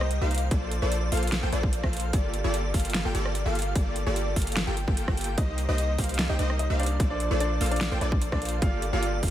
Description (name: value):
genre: future bass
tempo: 148 BPM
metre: 4/4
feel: half-time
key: G minor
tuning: A4 = 440 Hz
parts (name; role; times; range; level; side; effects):
- airy dreamy lead; arpeggios; 0.0-9.3 s; D5 to G5; -36 LUFS; equal; chorus, sidechain pumping
- supersaw stab; riff; 0.0-9.3 s; Bb3 to G5; -31 LUFS; equal; cassette tape, sidechain pumping
- long sustained 808-style bass; bass; 0.0-9.3 s; G1 to C2; -28 LUFS; equal; sidechain pumping
- big-room dance drum kit; drums; 0.0-9.3 s; hi-hat, rim click, snare drum; -32 LUFS; equal; overdrive
- electronic kick drum; drums; 0.5-9.3 s; none; -26 LUFS; equal; none
- clear baby grand piano; melody; 5.4-9.2 s; D4 to F5; -33 LUFS; equal; sidechain pumping, ping-pong delay
room: digital ambience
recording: none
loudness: -24 LUFS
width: side -12 dB against mid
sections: 0.0-9.3 A section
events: none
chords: 0.0 Cm7; 0.5 Bbmaj9; 2.1 Gm9; 5.4 Cm7; 7.0 Bbmaj9; 8.6 Gm9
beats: 0.11 | 0.51 0.92 1.32 1.73 | 2.13 2.54 2.94 3.35 | 3.75 4.16 4.57 4.97 | 5.38 5.78 6.19 6.59 | 7.00 7.40 7.81 8.21 | 8.62 9.03